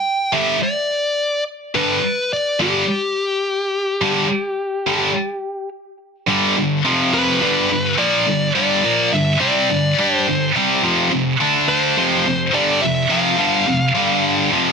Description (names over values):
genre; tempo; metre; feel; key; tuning
rock; 106 BPM; 4/4; straight; G mixolydian; A4 = 439 Hz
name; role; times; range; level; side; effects
dark smooth lead guitar; melody; 0.0-14.7 s; G4 to G5; -20 LUFS; left 1 dB; overdrive, analog delay
heavy high-gain guitar; riff; 0.3-14.7 s; F2 to G4; -16 LUFS; equal; distortion
room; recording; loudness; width
moderate studio ambience, RT60 0.5 s; dense, heavily limited modern master; -15 LUFS; side -5 dB against mid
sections
0.0-6.3 A section; 6.3-14.7 B section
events
none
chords
0.0 G5; 6.9 F5; 7.4 G5; 10.8 F5; 11.4 D5; 12.0 F5; 14.0 G5